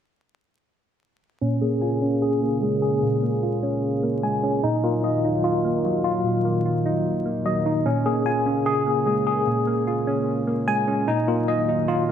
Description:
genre	hip hop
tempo	149 BPM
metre	4/4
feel	half-time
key	Bb minor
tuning	A4 = 441 Hz
part	soft electric-piano-like synth keys	accompaniment	1.4-12.1 s	Bb2 to F4	-24 LUFS	right 1 dB	chorus, low-pass filter
part	dark analog pad	sustained chords	1.4-12.1 s	Bb2 to Ab4	-28 LUFS	equal	chorus, low-pass filter
part	tine electric piano	arpeggios	1.4-12.1 s	Db4 to Ab5	-23 LUFS	left 1 dB	overdrive, fast stereo tremolo, low-pass filter, ping-pong delay
room	moderate concert hall reverb, RT60 2.3 s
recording	vinyl crackle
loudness	-20 LUFS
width	side -9 dB against mid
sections	1.4-12.1 A section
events	filter sweep 1.4-12.1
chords	1.4 Bbm7; 4.6 Ebmadd9/Bb; 7.9 Bbm7; 11.1 Ebmadd9/Bb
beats	| 1.42 1.82 2.22 2.62 | 3.03 3.43 3.83 4.24 | 4.64 5.04 5.44 5.84 | 6.25 6.65 7.05 7.46 | 7.86 8.26 8.66 9.07 | 9.47 9.87 10.28 10.68 | 11.08 11.48 11.89

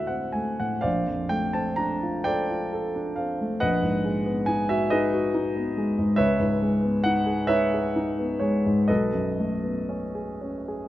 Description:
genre	classical, impressionist solo piano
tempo	38-49 BPM (dotted quarters)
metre	6/8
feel	rubato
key	unclear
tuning	A4 = 440 Hz
part	warm baby grand piano	solo	0.0-10.9 s	A#1 to A#5	-23 LUFS	equal	none
room	moderate concert hall reverb, RT60 2.2 s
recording	close, detailed microphones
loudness	-23 LUFS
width	side -14 dB against mid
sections	0.0-10.9 A section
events	none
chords	0.0 D9; 0.9 A#maj9; 3.6 G#m7/A#; 6.2 C#m9; 8.9 B13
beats	| 0.86 2.29 | 3.63 4.92 | 6.19 7.49 | 8.89 10.41

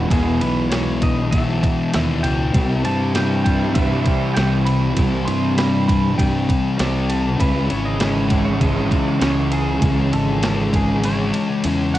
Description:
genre	rock, shoegaze and dream pop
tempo	99 BPM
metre	4/4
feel	straight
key	unclear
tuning	A4 = 440 Hz
part	electric guitar through a small old amp	melody	0.0-12.0 s	F#4 to C6	-28 LUFS	right 2 dB	cassette tape, analog delay
part	crunchy overdriven guitar	riff	0.0-12.0 s	E2 to E4	-26 LUFS	right 7 dB	reverse reverb, cassette tape
part	thick fuzz guitar	riff	0.0-12.0 s	E2 to C#4	-20 LUFS	left 3 dB	distortion, analog chorus, cassette tape
part	fuzz fingered electric bass	bass	0.0-12.0 s	E1 to G2	-22 LUFS	equal	overdrive
part	crisp 8-bit digital drum machine	drums	0.1-12.0 s	kick drum, ride cymbal, snare drum	-23 LUFS	right 1 dB	cassette tape
room	light reverb, digital ambience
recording	home recording on cassette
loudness	-16 LUFS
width	side -14 dB against mid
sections	0.0-12.0 A section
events	kick and snare drop out 11.0-12.0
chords	0.0 E; 2.5 C; 7.4 C#m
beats	| 0.10 0.71 1.32 1.93 | 2.54 3.15 3.76 4.37 | 4.97 5.58 6.19 6.80 | 7.40 8.01 8.62 9.22 | 9.83 10.44 11.04 11.65

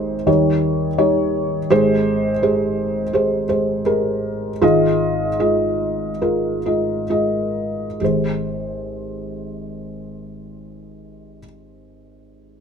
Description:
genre	folk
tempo	63-84 BPM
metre	4/4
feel	straight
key	Ab major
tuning	A4 = 445 Hz
part	felt-muted upright piano	solo	0.0-12.6 s	Ab1 to Eb5	-17 LUFS	equal	none
room	moderate large studio reverb, RT60 1.4 s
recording	close, detailed microphones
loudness	-17 LUFS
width	side -7 dB against mid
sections	0.0-1.7 A section; 1.7-8.0 B section; 8.0-11.8 C section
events	slowing down 1.7-8.0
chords	0.3 Eb7; 1.7 Abmaj7; 4.6 Fm7/Ab; 8.0 Abmaj7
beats	0.27 0.99 | 1.71 2.42 3.14 3.87 | 4.63 5.41 6.22 7.09 | 8.01 8.95 9.89 10.82

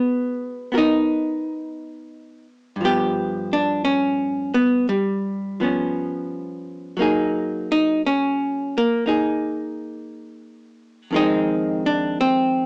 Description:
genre	jazz ballad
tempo	58 BPM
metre	4/4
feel	swing 68% on 8ths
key	unclear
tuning	A4 = 441 Hz
part	archtop guitar, miked and amplified	solo	0.0-12.7 s	F2 to Bb4	-22 LUFS	equal	cassette tape
room	moderate studio reverb, RT60 0.5 s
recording	home recording on cassette, small speaker sound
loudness	-22 LUFS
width	mono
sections	0.0-12.7 A section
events	none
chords	0.0 Abm9; 2.8 G7#11; 7.0 Gb69; 11.1 Fm7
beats	0.74 1.77 | 2.81 3.85 4.89 5.93 | 6.98 8.02 9.06 10.10 | 11.14 12.17

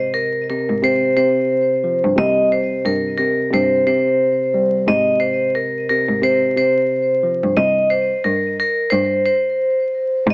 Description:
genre	hip hop, boom-bap hip-hop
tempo	89 BPM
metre	4/4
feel	swing 58% on 16ths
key	C minor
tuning	A4 = 440 Hz
part	vibraphone with hard mallets	melody	0.0-10.3 s	Bb4 to Eb5	-16 LUFS	equal	high-pass filter, low-pass filter
part	mellow tine electric piano	accompaniment	0.0-10.3 s	C3 to G3	-22 LUFS	equal	fast stereo tremolo, high-pass filter, low-pass filter
part	warm cello	bass	0.0-10.3 s	C2 to Ab2	-22 LUFS	equal	none
room	moderate small room reverb, RT60 0.5 s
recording	vinyl crackle, small speaker sound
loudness	-15 LUFS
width	side -30 dB against mid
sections	0.0-10.3 A section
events	none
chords	0.0 Ab6; 2.2 C5; 4.9 Ab6; 7.6 C5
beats	0.15 0.83 1.50 | 2.18 2.85 3.52 4.20 | 4.87 5.55 6.22 6.90 | 7.57 8.24 8.92 9.59 | 10.27

